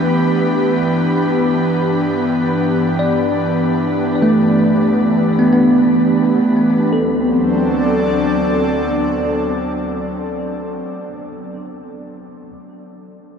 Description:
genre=ambient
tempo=78 BPM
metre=4/4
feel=straight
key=D mixolydian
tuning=A4 = 441 Hz
part: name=airy breathy pad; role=sustained chords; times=0.0-10.8 s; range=E3 to D5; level=-17 LUFS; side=equal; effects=chorus
part: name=bell-like tine electric piano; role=arpeggios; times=0.0-12.5 s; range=A3 to D5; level=-18 LUFS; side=equal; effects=ping-pong delay
part: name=clear studio double bass section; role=bass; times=0.0-9.2 s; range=D2 to G2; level=-34 LUFS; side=equal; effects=none
part: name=wind-like tuned noise texture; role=texture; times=0.0-6.9 s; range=B4 to B5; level=-29 LUFS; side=right 2 dB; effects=built-in reverb
room=wet huge ambient reverb, RT60 9.2 s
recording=dark, warm production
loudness=-13 LUFS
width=side -7 dB against mid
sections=0.0-6.9 A section; 6.9-10.0 B section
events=fade-out on double bass section 0.0-6.9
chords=0.0 Em7; 0.8 G6; 6.9 D7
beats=0.01 | 0.77 1.53 2.29 3.05 | 3.82 4.59 5.36 6.15 | 6.93 7.70 8.46 9.23

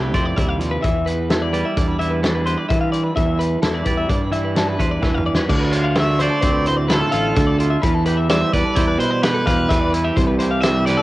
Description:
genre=math rock and midwest emo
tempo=129 BPM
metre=5/4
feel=straight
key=C major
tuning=A4 = 436 Hz
part: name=twangy electric guitar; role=accompaniment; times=0.0-11.0 s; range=A2 to D5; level=-22 LUFS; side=right 4 dB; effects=cassette tape
part: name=twelve-string electric guitar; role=arpeggios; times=0.0-11.0 s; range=A4 to F5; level=-24 LUFS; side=left 4 dB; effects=cassette tape, analog delay
part: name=fuzz fingered electric bass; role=bass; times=0.0-11.0 s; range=A1 to E3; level=-22 LUFS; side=equal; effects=overdrive
part: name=loose indie drum kit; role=drums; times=0.1-11.0 s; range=crash cymbal, hi-hat, kick drum, snare drum, toms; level=-21 LUFS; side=equal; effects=cassette tape
part: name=crunchy overdriven guitar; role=melody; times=6.0-11.0 s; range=A4 to E5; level=-22 LUFS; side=equal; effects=none
room=light reverb, small room reverb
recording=home recording on cassette, nothing above 11.0 kHz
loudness=-16 LUFS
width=side -17 dB against mid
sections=0.0-5.5 A section; 5.5-11.0 B section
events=drum fill 5.0-5.5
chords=0.0 Fmaj9#11; 0.8 Cmaj9/E (rootless); 5.5 Dm7; 7.8 Em; 10.2 Cmaj7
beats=0.37 | 0.84 1.30 1.76 2.23 2.69 | 3.16 3.63 4.09 4.56 5.02 | 5.49 5.96 6.42 6.89 7.36 | 7.82 8.29 8.76 9.23 9.70 | 10.16 10.63

